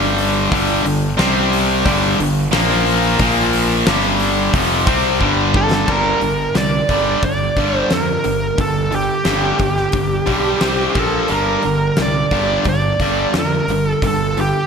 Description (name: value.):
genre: hard rock.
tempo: 89 BPM.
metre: 4/4.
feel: straight.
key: G minor.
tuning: A4 = 439 Hz.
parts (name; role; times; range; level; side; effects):
distorted electric guitar; riff; 0.0-14.7 s; F2 to C4; -17 LUFS; equal; overdrive.
fuzz fingered electric bass; bass; 0.0-14.5 s; F1 to F2; -23 LUFS; equal; overdrive.
huge arena drum kit; drums; 0.2-14.5 s; crash cymbal, hi-hat, kick drum, snare drum; -22 LUFS; equal; none.
smooth overdriven lead guitar; melody; 5.6-14.7 s; G4 to D5; -19 LUFS; right 2 dB; none.
room: moderate lush hall reverb, RT60 1.6 s, small room reverb.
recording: bright 1980s-style digital production.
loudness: -14 LUFS.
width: side -6 dB against mid.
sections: 0.0-5.9 A section; 5.9-14.7 B section.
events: drum fill 5.2-5.9.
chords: 0.0 G5; 1.2 C5; 1.9 G5; 2.5 Bb5; 3.9 G5; 5.9 Gm; 10.6 C5; 11.0 Bb5; 11.3 Gm.